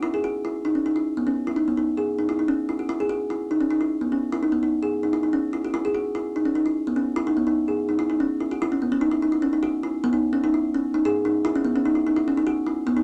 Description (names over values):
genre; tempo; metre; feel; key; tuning
rock; 294 BPM (eighths); 7/8; straight; unclear; A4 = 440 Hz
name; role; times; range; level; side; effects
kalimba; solo; 0.0-13.0 s; B3 to G#4; -24 LUFS; equal; none
room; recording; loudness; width
moderate small room reverb, RT60 0.5 s; none; -24 LUFS; mono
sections
0.0-8.6 A section; 8.6-13.0 B section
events
none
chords
none